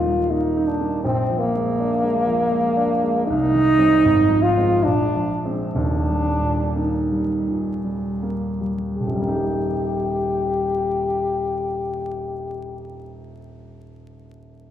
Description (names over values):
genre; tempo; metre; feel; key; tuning
classical, romantic duo for French horn and grand piano; 50-84 BPM; 3/4; rubato; Eb major; A4 = 442 Hz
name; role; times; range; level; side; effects
mellow French horn; melody; 0.0-13.2 s; Bb3 to G4; -20 LUFS; equal; none
dark baby grand piano; accompaniment; 0.0-14.7 s; Eb1 to G4; -24 LUFS; right 1 dB; none
room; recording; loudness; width
wet scoring stage reverb, RT60 1.9 s; heard from further back in the room, vinyl crackle; -19 LUFS; side -10 dB against mid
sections
0.0-9.0 A section; 9.0-12.4 B section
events
slowing down 2.2-9.0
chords
0.0 Eb; 1.1 Bb7; 3.3 Cm; 4.0 Fm/Ab; 4.8 Bb9; 5.8 Eb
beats
0.31 | 1.05 1.79 2.51 | 3.28 4.03 4.85 | 5.76 6.77 7.84 | 9.00 10.13 11.27